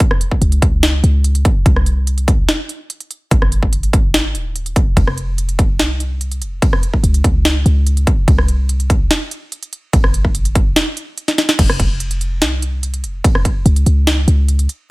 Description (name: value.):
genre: future bass.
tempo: 145 BPM.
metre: 4/4.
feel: half-time.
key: F minor.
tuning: A4 = 440 Hz.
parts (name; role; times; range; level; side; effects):
electronic kick drum; drums; 0.0-13.5 s; none; -14 LUFS; equal; none.
trap drum kit; drums; 0.0-14.8 s; crash cymbal, hi-hat, ride cymbal, rim click, snare drum; -18 LUFS; equal; none.
warm 808-style bass; bass; 0.4-14.7 s; Eb1 to Db2; -15 LUFS; equal; sidechain pumping.
room: digital ambience.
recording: none.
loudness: -13 LUFS.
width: side -22 dB against mid.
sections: 0.0-11.6 A section; 11.6-14.9 A section.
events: drop 0.0-11.6, 11.6-14.9; break 10.8-11.6; drum fill 11.3-11.6.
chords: none.